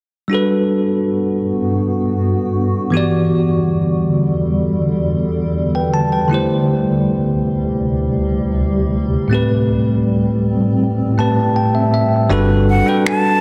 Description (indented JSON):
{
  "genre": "contemporary R&B",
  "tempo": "80 BPM",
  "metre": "4/4",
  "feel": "straight",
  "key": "G major",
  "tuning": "A4 = 439 Hz",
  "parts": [
    { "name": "bell-like tine electric piano", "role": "accompaniment", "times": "0.3-13.4 s", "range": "A2 to A5", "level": "-19 LUFS", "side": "equal", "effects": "none" },
    { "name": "granular cloud pad", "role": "sustained chords", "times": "0.9-13.4 s", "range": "D2 to B4", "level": "-21 LUFS", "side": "equal", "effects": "built-in reverb" },
    { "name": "vintage muted fingered electric bass", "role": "bass", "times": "12.3-12.8 s", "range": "G1", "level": "-17 LUFS", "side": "equal", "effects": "none" },
    { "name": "breathy silver concert flute", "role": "melody", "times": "12.7-13.4 s", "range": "F#5 to A5", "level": "-19 LUFS", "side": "equal", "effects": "none" },
    { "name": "electronic finger snaps", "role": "drums", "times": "13.1-13.2 s", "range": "none", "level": "-26 LUFS", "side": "equal", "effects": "none" }
  ],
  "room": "wet plate reverb, RT60 3.3 s",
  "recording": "dreamy mix soaked in reverb",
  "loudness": "-17 LUFS",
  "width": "mono",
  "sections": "0.3-12.3 A section; 12.3-13.4 B section",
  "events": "tine electric piano fill 10.8-12.3; kick muted 12.3-13.4",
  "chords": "0.3 Gmaj7; 2.9 Em7; 6.3 D7sus4; 9.3 Am7; 12.3 Gmaj7",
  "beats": "| 0.30 1.05 1.80 2.55 | 3.30 4.05 4.80 5.55 | 6.30 7.05 7.80 8.55 | 9.30 10.05 10.80 11.55 | 12.30 13.05"
}